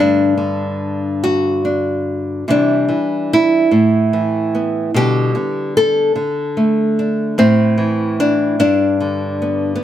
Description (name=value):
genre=folk, solo fingerstyle acoustic guitar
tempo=49 BPM (dotted quarters)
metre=6/8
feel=rubato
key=unclear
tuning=A4 = 439 Hz
part: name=nylon-string guitar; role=solo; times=0.0-9.8 s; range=G2 to A4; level=-14 LUFS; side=equal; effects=none
room=light reverb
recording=none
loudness=-14 LUFS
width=side -11 dB against mid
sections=0.0-9.8 A section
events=none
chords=0.0 G5; 2.5 C; 3.7 Asus2; 4.9 G/B; 6.2 D5; 7.4 Am; 8.6 G